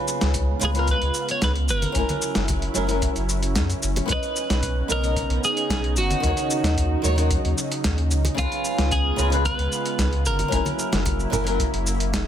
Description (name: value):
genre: sunset chillout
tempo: 112 BPM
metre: 4/4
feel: straight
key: unclear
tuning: A4 = 439 Hz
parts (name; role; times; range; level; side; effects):
- flamenco guitar; accompaniment; 0.0-11.7 s; C#3 to D#5; -28 LUFS; moving between left 5 dB and right 2 dB; auto-pan, tape echo
- lush unison pad; sustained chords; 0.0-12.3 s; C#3 to E#4; -30 LUFS; right 1 dB; chorus
- dusty soul sampler-style drum kit; drums; 0.1-12.2 s; hi-hat, shaker, snare drum; -28 LUFS; equal; small room ambience
- warm sub bass; bass; 0.2-12.3 s; E1 to F#2; -24 LUFS; equal; none
- electronic kick drum; drums; 0.3-12.2 s; none; -29 LUFS; equal; small room ambience
- twelve-string electric guitar; melody; 0.6-12.1 s; E#4 to C#5; -27 LUFS; right 1 dB; tape echo
- congas; percussion; 1.8-11.4 s; none; -31 LUFS; equal; none
room: light reverb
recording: dense, heavily limited modern master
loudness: -20 LUFS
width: side -10 dB against mid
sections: 0.0-12.3 A section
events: none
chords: 0.0 C#7; 1.7 F#7; 4.1 Bmaj9; 6.2 D#m7; 8.4 C#7; 10.3 F#7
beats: 0.35 0.88 1.42 | 1.95 2.49 3.03 3.56 | 4.10 4.63 5.17 5.70 | 6.24 6.78 7.31 7.85 | 8.38 8.92 9.45 9.99 | 10.53 11.06 11.60 12.13